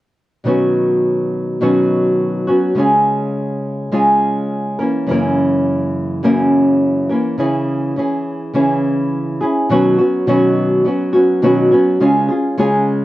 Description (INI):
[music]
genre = pop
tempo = 104 BPM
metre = 4/4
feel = straight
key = B major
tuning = A4 = 440 Hz
[part]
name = nylon-string guitar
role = accompaniment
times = 0.4-13.0 s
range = F#2 to A#4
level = -13 LUFS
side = equal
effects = none
[sound]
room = light reverb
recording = worn, warbling old tape, cassette tape, warbly pitch drift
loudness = -13 LUFS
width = side -16 dB against mid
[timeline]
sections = 0.5-9.7 A section; 9.7-13.0 B section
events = none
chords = 0.5 Badd9; 2.8 C#; 4.8 F#7; 7.4 C#m; 9.7 Badd9; 12.0 C#